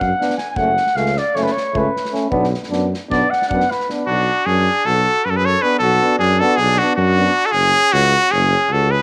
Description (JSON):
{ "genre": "balkan folk, Balkan brass band", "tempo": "310 BPM (eighths)", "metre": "9/8", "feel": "straight", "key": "unclear", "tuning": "A4 = 440 Hz", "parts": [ { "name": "warm flugelhorn", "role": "second line", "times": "0.0-9.0 s", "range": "C#4 to G#5", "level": "-24 LUFS", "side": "equal", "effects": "none" }, { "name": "mellow tuba", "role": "bass", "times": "0.0-9.0 s", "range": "F#1 to F#2", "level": "-22 LUFS", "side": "equal", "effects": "none" }, { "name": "unplugged drum kit", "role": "percussion", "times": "0.0-3.9 s", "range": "kick drum, snare drum", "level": "-32 LUFS", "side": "equal", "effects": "none" }, { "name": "clear euphonium", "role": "accompaniment", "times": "0.2-7.3 s", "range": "C#4 to D4", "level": "-29 LUFS", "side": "equal", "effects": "none" }, { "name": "clear euphonium", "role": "accompaniment", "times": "0.2-7.3 s", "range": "A3 to B3", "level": "-26 LUFS", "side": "equal", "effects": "none" }, { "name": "bright trumpet", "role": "melody", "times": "4.1-9.0 s", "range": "F#4 to C#5", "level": "-17 LUFS", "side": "equal", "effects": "none" } ], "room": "moderate plate reverb, RT60 1.6 s, small room reverb", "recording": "none", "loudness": "-17 LUFS", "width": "mono", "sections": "0.0-4.1 A section; 4.1-9.0 B section", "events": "flugelhorn solo 0.0-4.1", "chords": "0.0 Bm; 0.6 F#m; 2.3 Bm; 7.5 F#5", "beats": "0.18 0.38 | 0.57 0.76 0.96 1.15 1.35 1.54 1.74 1.93 2.12 | 2.32 2.51 2.71 2.90 3.09 3.29 3.48 3.67 3.87 | 4.06 4.26 4.45 4.64 4.83 5.03 5.22 5.41 5.61 | 5.80 5.99 6.18 6.38 6.57 6.76 6.95 7.15 7.34 | 7.53 7.72 7.92 8.11 8.30 8.49 8.68 8.87" }